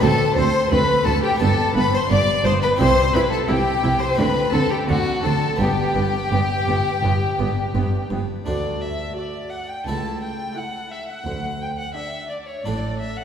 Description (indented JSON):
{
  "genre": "classical, baroque-style concerto movement with solo episodes",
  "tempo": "86 BPM",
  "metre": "4/4",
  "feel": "straight",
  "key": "G major, D major from 8.5 s",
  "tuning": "A4 = 440 Hz",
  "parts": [
    { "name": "rich violin", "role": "melody", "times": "0.0-13.2 s", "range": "F#4 to A5", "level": "-25 LUFS", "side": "left 2 dB", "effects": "none" },
    { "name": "warm chamber violin section", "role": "melody", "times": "0.0-12.5 s", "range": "A4 to D6", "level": "-28 LUFS", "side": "left 6 dB", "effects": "none" },
    { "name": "warm studio violin section", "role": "second line", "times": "0.0-13.2 s", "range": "F#4 to A5", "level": "-26 LUFS", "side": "left 1 dB", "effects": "none" },
    { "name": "harpsichord", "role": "accompaniment", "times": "0.0-13.2 s", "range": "C#2 to A4", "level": "-30 LUFS", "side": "right 1 dB", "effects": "none" },
    { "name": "rich studio viola section", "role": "accompaniment", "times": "0.0-12.5 s", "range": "B3 to F#4", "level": "-29 LUFS", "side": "right 1 dB", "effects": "none" },
    { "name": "rich chamber double bass section", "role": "bass", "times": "0.0-13.2 s", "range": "G1 to D2", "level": "-25 LUFS", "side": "right 2 dB", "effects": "none" },
    { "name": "warm chamber cello section", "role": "bass", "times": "0.0-13.2 s", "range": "C#2 to D3", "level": "-25 LUFS", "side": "right 1 dB", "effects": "none" }
  ],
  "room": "wet concert hall reverb, RT60 2.4 s",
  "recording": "heard from further back in the room",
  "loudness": "-18 LUFS",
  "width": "side -8 dB against mid",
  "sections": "0.0-8.5 A section; 8.5-13.2 B section",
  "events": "none",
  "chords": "0.0 D7; 1.4 G; 2.8 C; 4.2 D7; 5.6 G; 8.5 D; 9.9 A/C#; 11.3 D5"
}